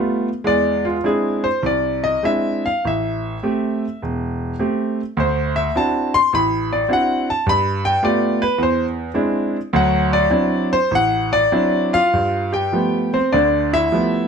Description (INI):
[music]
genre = solo jazz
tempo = 103 BPM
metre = 4/4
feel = swing 67% on 8ths, rubato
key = unclear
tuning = A4 = 440 Hz
[part]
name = clear grand piano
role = solo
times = 0.0-14.3 s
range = E1 to C6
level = -16 LUFS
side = equal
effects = none
[sound]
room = light reverb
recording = close, detailed microphones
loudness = -16 LUFS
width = side -6 dB against mid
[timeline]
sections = 0.0-12.1 A section; 12.1-14.3 B section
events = grand piano solo 0.0-12.1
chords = 0.5 Eaug7; 2.8 Am7; 5.2 D9; 7.5 G9; 8.6 Eaug7; 9.7 D9; 12.1 G9